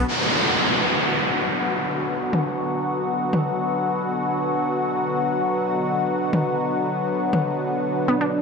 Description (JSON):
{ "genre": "melodic techno", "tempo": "120 BPM", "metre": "4/4", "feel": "straight", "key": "B minor", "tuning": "A4 = 440 Hz", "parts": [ { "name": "lush unison pad", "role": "sustained chords", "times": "0.0-8.4 s", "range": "D3 to A4", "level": "-24 LUFS", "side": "left 2 dB", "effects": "chorus" }, { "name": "overtone-sweeping drone", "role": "drone", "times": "0.9-8.4 s", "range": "B2 to F#3", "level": "-27 LUFS", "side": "right 1 dB", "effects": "chorus, built-in reverb" }, { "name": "downlifter", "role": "sound effects", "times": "0.1-4.1 s", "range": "none", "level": "-22 LUFS", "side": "equal", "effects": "none" }, { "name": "electronic toms", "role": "drums", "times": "2.3-7.4 s", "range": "none", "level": "-24 LUFS", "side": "left 1 dB", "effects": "low-pass filter on perc, studio reverb, low-pass filter on hats, low-pass filter on snare, low-pass filter on toms" }, { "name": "expressive synth lead", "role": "melody", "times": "8.1-8.4 s", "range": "D4", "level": "-30 LUFS", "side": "right 4 dB", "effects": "none" }, { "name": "wide unison pluck", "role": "arpeggios", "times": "8.1-8.3 s", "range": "B3 to D4", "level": "-25 LUFS", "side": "equal", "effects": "analog delay" } ], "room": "moderate recital hall reverb, RT60 1.6 s", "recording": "dry, gritty hardware recording, transformer saturation", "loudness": "-20 LUFS", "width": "side -4 dB against mid", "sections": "0.1-8.4 A section", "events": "filter sweep on drum 0.1-8.4", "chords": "0.1 Bm" }